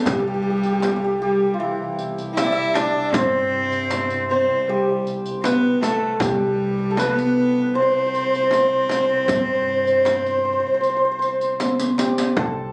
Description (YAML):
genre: Persian modal ensemble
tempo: 78 BPM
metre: 4/4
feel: straight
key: C dastgah mahur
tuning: A4 = 440 Hz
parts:
  - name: santur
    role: melody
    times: 0.0-12.7 s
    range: E4 to E5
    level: -24 LUFS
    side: equal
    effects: none
  - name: breathy reedy low ney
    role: second line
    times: 0.0-11.6 s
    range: E4 to F5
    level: -29 LUFS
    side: equal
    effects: none
  - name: rich cello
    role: second line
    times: 0.0-11.6 s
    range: E3 to E4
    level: -26 LUFS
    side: equal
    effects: none
  - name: rich double bass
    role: drone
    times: 0.0-12.4 s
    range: C2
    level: -38 LUFS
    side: equal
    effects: none
  - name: upright bass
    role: bass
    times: 0.1-12.7 s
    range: C2 to G2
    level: -35 LUFS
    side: equal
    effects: none
  - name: frame drum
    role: percussion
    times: 0.1-12.5 s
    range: none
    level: -28 LUFS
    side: equal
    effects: none
  - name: riq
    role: percussion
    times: 0.1-12.4 s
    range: none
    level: -29 LUFS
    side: equal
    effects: none
  - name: tombak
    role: percussion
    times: 0.1-12.5 s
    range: none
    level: -34 LUFS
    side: equal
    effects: none
room: light reverb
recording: recorded on a phone in the room, club reverb, compression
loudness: -20 LUFS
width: mono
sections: 0.0-12.4 A section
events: drum fill 11.6-12.4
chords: none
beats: | 0.07 0.83 1.60 2.37 | 3.14 3.91 4.68 5.45 | 6.21 6.98 7.75 8.52 | 9.29 10.06 10.83 11.60 | 12.37